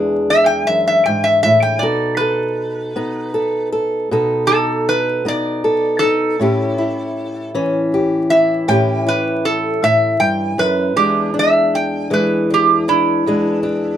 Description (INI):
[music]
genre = acoustic country blues, solo or duo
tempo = 52 BPM (dotted quarters)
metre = 12/8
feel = straight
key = unclear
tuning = A4 = 440 Hz
[part]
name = fingerpicked old ladder-braced acoustic guitar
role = accompaniment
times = 0.0-14.0 s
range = E2 to A4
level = -17 LUFS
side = left 1 dB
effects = none
[part]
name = metal-body resonator slide guitar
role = melody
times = 0.3-14.0 s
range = E4 to G5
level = -16 LUFS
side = right 1 dB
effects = none
[sound]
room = light reverb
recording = close, detailed microphones, vinyl crackle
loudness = -14 LUFS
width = side -10 dB against mid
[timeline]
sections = 0.0-14.0 A section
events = none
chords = 0.0 E7; 1.8 B7; 6.4 A7; 11.0 E7